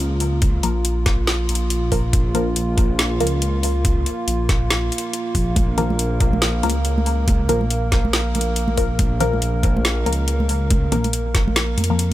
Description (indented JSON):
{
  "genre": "deep dubstep",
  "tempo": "140 BPM",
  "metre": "4/4",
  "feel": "swing 58% on 16ths, half-time",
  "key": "Bb minor",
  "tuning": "A4 = 438 Hz",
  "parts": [
    { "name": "dark analog pad", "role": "sustained chords", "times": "0.0-12.1 s", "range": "Bb3 to Bb4", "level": "-26 LUFS", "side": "right 1 dB", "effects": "chorus" },
    { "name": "dark detuned saw bass", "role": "bass", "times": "0.0-12.1 s", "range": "Bb1 to F2", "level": "-21 LUFS", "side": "equal", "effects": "none" },
    { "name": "garage drum kit", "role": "drums", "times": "0.2-12.1 s", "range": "hi-hat, snare drum", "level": "-24 LUFS", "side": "left 1 dB", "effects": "small room ambience" },
    { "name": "electronic kick drum", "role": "drums", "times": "0.4-11.4 s", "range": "none", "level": "-20 LUFS", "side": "equal", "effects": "small room ambience" },
    { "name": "filtered dub chord stab", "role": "stabs", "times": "0.6-12.1 s", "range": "F3 to Bb4", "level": "-26 LUFS", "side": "left 3 dB", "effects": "phaser, dub echo" },
    { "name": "congas", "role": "percussion", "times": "5.6-11.9 s", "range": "none", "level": "-27 LUFS", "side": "right 3 dB", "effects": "dub echo" }
  ],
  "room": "little or no reverb",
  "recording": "none",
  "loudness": "-17 LUFS",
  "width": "side -14 dB against mid",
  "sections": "0.0-12.1 A section",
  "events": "none",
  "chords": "0.0 Bb5"
}